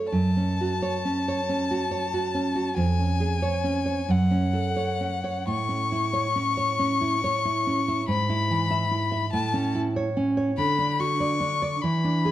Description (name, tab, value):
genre	romantic duo for violin and classical guitar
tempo	40-49 BPM (dotted quarters)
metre	6/8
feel	rubato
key	F# minor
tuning	A4 = 440 Hz
part	clear violin	melody	0.0-12.3 s	F#5 to C#6	-27 LUFS	left 5 dB	none
part	nylon-string guitar	accompaniment	0.0-12.3 s	E#2 to E5	-24 LUFS	right 2 dB	none
room	wet recital hall reverb, RT60 1.4 s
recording	dark, warm production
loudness	-23 LUFS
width	side -13 dB against mid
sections	0.1-12.3 A section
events	none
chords	0.1 F#m; 2.8 C#/E#; 4.1 F#m; 5.5 A; 8.1 E/G#; 9.3 A; 10.6 D